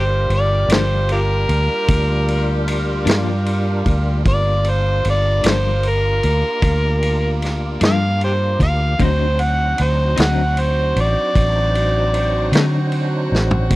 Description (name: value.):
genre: slow blues.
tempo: 51 BPM (dotted quarters).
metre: 12/8.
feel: straight.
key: G minor.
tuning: A4 = 440 Hz.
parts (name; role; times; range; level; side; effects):
overdriven harmonica; melody; 0.0-12.5 s; F4 to F#5; -20 LUFS; equal; none.
tonewheel organ; sustained chords; 0.0-13.8 s; F#3 to C5; -28 LUFS; right 1 dB; overdrive, chorus vibrato, slow rotary speaker.
warm horn section; sustained chords; 0.0-13.8 s; Bb3 to Bb4; -28 LUFS; equal; none.
vintage muted fingered electric bass; bass; 0.0-13.8 s; G1 to D3; -18 LUFS; equal; none.
vintage drum kit; drums; 0.3-13.8 s; kick drum, ride cymbal, snare drum, toms; -22 LUFS; equal; none.
semi-hollow electric guitar; accompaniment; 0.7-12.8 s; G2 to Eb4; -23 LUFS; left 6 dB; tremolo.
room: little or no reverb.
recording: dry, close 1970s-style studio recording.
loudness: -15 LUFS.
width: side -18 dB against mid.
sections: 0.0-13.8 A section.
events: harmonica solo 0.0-13.8; drum fill 13.3-13.7.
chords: 0.0 Gm7; 9.0 D7b9.